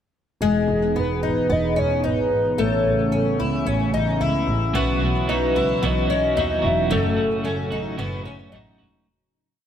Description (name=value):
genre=dream pop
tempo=111 BPM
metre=4/4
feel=straight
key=E major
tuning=A4 = 443 Hz
part: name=hollow soft pad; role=sustained chords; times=0.4-9.0 s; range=A2 to G#4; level=-26 LUFS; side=right 1 dB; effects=chorus
part: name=fingerpicked twelve-string acoustic guitar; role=arpeggios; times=0.4-9.1 s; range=G#3 to E4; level=-24 LUFS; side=left 4 dB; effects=analog chorus, digital delay
part: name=rich double bass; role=bass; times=0.4-9.0 s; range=E1 to D#2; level=-26 LUFS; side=right 1 dB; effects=none
part: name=hollow clarinet-like synth lead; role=melody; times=1.0-8.5 s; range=A4 to E5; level=-24 LUFS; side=equal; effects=chorus, digital delay
part: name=electric guitar at the edge of break-up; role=accompaniment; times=4.7-9.1 s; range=F#2 to F#4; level=-27 LUFS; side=right 4 dB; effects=tremolo, wide subtle chorus
room=moderate plate reverb, RT60 2.5 s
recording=none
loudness=-19 LUFS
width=side -9 dB against mid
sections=0.4-9.1 verse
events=fade-out 6.9-9.1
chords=0.4 Emaj7; 2.6 A; 4.7 Bsus4; 6.9 F#m